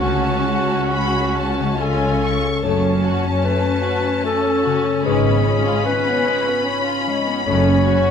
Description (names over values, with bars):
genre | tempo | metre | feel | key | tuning
classical | 68-76 BPM | 3/4 | rubato | F# minor | A4 = 440 Hz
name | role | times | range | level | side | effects
clear symphonic violin section | melody | 0.0-8.1 s | G#5 to C#6 | -26 LUFS | left 2 dB | none
mellow cor anglais | second line | 0.0-1.7 s | F#4 | -24 LUFS | right 2 dB | none
warm symphonic violin section | second line | 0.0-8.1 s | G#3 to F#4 | -26 LUFS | left 3 dB | none
rich symphonic viola section | accompaniment | 0.0-8.1 s | C#4 | -24 LUFS | right 1 dB | none
concert harp | arpeggios | 0.0-8.1 s | F#2 to F#4 | -24 LUFS | left 10 dB | none
rich symphonic cello section | bass | 0.0-8.1 s | C#2 to G#2 | -24 LUFS | right 3 dB | none
rich symphonic double bass section | bass | 0.0-8.1 s | F#1 to C#2 | -24 LUFS | right 3 dB | none
warm clarinet | second line | 1.8-8.1 s | G#4 to C#5 | -21 LUFS | left 2 dB | none
dark French horn section | sustained chords | 2.6-7.8 s | C#4 to B4 | -25 LUFS | left 2 dB | none
room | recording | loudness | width
light reverb | close, detailed microphones | -16 LUFS | side -7 dB against mid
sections
0.0-2.6 A section; 2.6-8.1 A section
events
none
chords
0.0 F#m/C#; 1.8 C#; 2.6 F#m; 5.1 C#7/G#; 7.5 F#m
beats
| 0.04 0.92 1.79 | 2.64 3.45 4.26 | 5.06 5.87 6.67 | 7.47